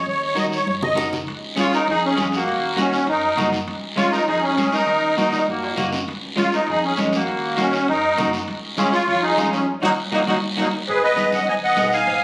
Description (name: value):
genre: latin, cumbia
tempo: 200 BPM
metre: 4/4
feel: straight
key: Eb minor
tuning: A4 = 440 Hz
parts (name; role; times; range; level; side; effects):
- musette accordion; melody; 0.0-12.2 s; Gb3 to Ab5; -19 LUFS; equal; none
- upright bass; bass; 0.1-12.2 s; Db2 to Cb3; -33 LUFS; equal; none
- guiro; percussion; 0.1-12.2 s; none; -30 LUFS; equal; none
- semi-hollow electric guitar; accompaniment; 0.3-12.0 s; Ab3 to Bb4; -26 LUFS; equal; none
- congas; percussion; 0.4-11.9 s; none; -29 LUFS; equal; none
- timbales and cowbell; percussion; 1.3-12.2 s; none; -35 LUFS; right 2 dB; none
- clear trumpet; second line; 1.6-12.2 s; Ab3 to Db5; -27 LUFS; equal; none
room: moderate plate reverb, RT60 2.5 s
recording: recorded on a phone in the room, studio reverb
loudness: -17 LUFS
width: side -24 dB against mid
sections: 0.0-1.3 A section; 1.3-10.9 A section; 10.9-12.2 B section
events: drum fill 0.7-1.3, 5.3-6.1, 10.0-10.9; band accent 9.7-10.9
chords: 0.1 Ebm; 1.3 Db; 2.5 Ebm; 3.7 Db; 4.9 Ebm; 6.1 Db; 7.3 Ebm; 8.5 Db; 9.7 Ebm; 10.9 Abm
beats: | 0.07 0.38 0.68 0.98 | 1.28 1.58 1.88 2.18 | 2.48 2.78 3.08 3.38 | 3.68 3.98 4.28 4.58 | 4.88 5.18 5.48 5.78 | 6.08 6.38 6.68 6.98 | 7.28 7.58 7.88 8.18 | 8.48 8.78 9.08 9.38 | 9.68 9.98 10.28 10.58 | 10.88 11.18 11.48 11.78 | 12.08